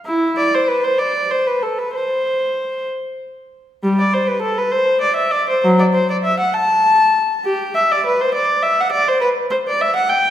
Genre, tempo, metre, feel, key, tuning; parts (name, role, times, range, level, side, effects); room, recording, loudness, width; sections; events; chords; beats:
classical, baroque-style suite movement for unaccompanied viola; 62-69 BPM (dotted quarters); 6/8; rubato; C major, G major from 3.8 s; A4 = 439 Hz
warm viola; solo; 0.1-10.3 s; F#3 to A5; -15 LUFS; equal
wet recital hall reverb, RT60 1.6 s; heard from further back in the room; -15 LUFS; side -11 dB against mid
0.0-3.8 A section; 3.8-10.3 A section
| 0.08 0.99 | 1.94 2.89 | 3.83 4.73 | 5.65 6.57 | 7.46 8.35 | 9.23 10.11